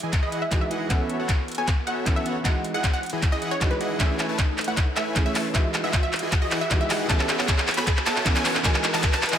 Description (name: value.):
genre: future bass.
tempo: 155 BPM.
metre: 4/4.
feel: half-time.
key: E major.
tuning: A4 = 440 Hz.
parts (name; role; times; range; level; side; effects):
felt-muted upright piano; accompaniment; 0.0-9.4 s; E3 to A4; -31 LUFS; right 2 dB; vintage 12-bit sampler grit, sidechain pumping.
big bright polysynth; riff; 0.0-9.4 s; E3 to B5; -30 LUFS; equal; sidechain pumping.
saturated sub bass; bass; 0.0-9.4 s; none; barely audible; none; none.
dubstep drum kit; drums; 0.0-9.4 s; handclaps, hi-hat; -26 LUFS; equal; none.
riser; sound effects; 1.4-9.4 s; none; -35 LUFS; equal; none.
electronic kick drum; drums; 0.1-9.1 s; none; -23 LUFS; equal; none.
wide unison pluck; melody; 0.2-9.2 s; B4 to B5; -30 LUFS; equal; sidechain pumping, dub echo.
room: moderate lush hall reverb, RT60 1.8 s.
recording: none.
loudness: -21 LUFS.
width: side -9 dB against mid.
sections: 0.0-9.4 A section.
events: build-up 0.0-9.4; drum fill 0.0-9.4; riser 1.4-9.4.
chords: 0.0 Emaj9; 0.9 B9sus4; 2.5 Emaj9; 4.0 Amaj7; 5.5 Emaj9; 7.1 B9sus4; 8.6 Emaj9.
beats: 0.13 0.52 | 0.90 1.29 1.68 2.06 | 2.45 2.84 3.23 3.61 | 4.00 4.39 4.77 5.16 | 5.55 5.93 6.32 6.71 | 7.10 7.48 7.87 8.26 | 8.64 9.03.